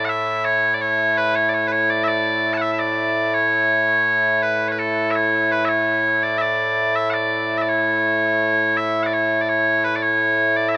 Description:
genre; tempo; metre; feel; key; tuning
scottish traditional, Scottish pipe music; 83 BPM; 3/4; straight; A major; A4 = 440 Hz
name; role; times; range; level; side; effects
loud bright bagpipes; solo; 0.0-10.8 s; A2 to A5; -19 LUFS; equal; none
room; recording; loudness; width
light reverb; none; -19 LUFS; mono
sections
0.0-10.8 A section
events
none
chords
none

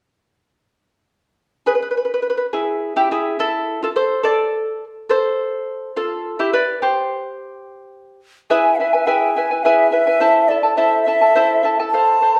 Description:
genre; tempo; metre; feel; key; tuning
andean folk; 70 BPM (dotted quarters); 6/8; straight; A minor; A4 = 440 Hz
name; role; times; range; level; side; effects
charango; accompaniment; 1.7-12.4 s; E4 to A5; -20 LUFS; equal; none
large quena; melody; 8.5-12.4 s; D5 to A5; -18 LUFS; equal; none
room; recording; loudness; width
moderate recital hall reverb, RT60 1.2 s; recorded in a church or concert hall; -18 LUFS; mono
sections
1.7-8.5 A section; 8.5-12.4 B section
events
charango solo 1.7-8.5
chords
1.7 N.C.; 3.4 A5; 5.1 F; 6.8 N.C.; 8.5 E; 10.2 Am

